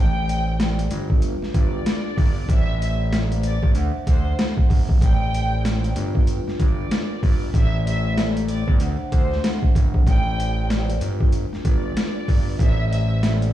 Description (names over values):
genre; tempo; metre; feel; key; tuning
hip hop, boom-bap hip-hop; 95 BPM; 4/4; swing 60% on 16ths; A minor; A4 = 440 Hz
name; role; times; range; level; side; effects
dark studio violin section; melody; 0.0-13.2 s; C5 to G5; -30 LUFS; equal; high-pass filter, low-pass filter, digital delay
vibraphone with soft mallets; accompaniment; 0.0-13.5 s; G3 to F#5; -30 LUFS; left 2 dB; cassette tape, high-pass filter, low-pass filter
fat analog bass; bass; 0.0-13.5 s; G1 to D2; -22 LUFS; equal; none
boom bap sampler-style drum kit; drums; 0.3-13.5 s; hi-hat, kick drum, snare drum; -20 LUFS; equal; overdrive
room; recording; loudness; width
little or no reverb; played on a big sound system in a bare room, stone room reverb, small room ambience; -18 LUFS; side -13 dB against mid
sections
0.0-13.5 A section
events
none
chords
0.0 Am11; 0.9 G7; 2.5 Am11; 3.8 D9; 5.0 Am11; 6.0 G7; 7.5 Am11; 8.8 D9; 10.1 Am11; 11.0 G7; 12.6 Am11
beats
0.59 1.22 1.86 | 2.49 3.12 3.75 4.38 | 5.01 5.64 6.28 6.91 | 7.54 8.17 8.80 9.44 | 10.07 10.70 11.33 11.96 | 12.59 13.22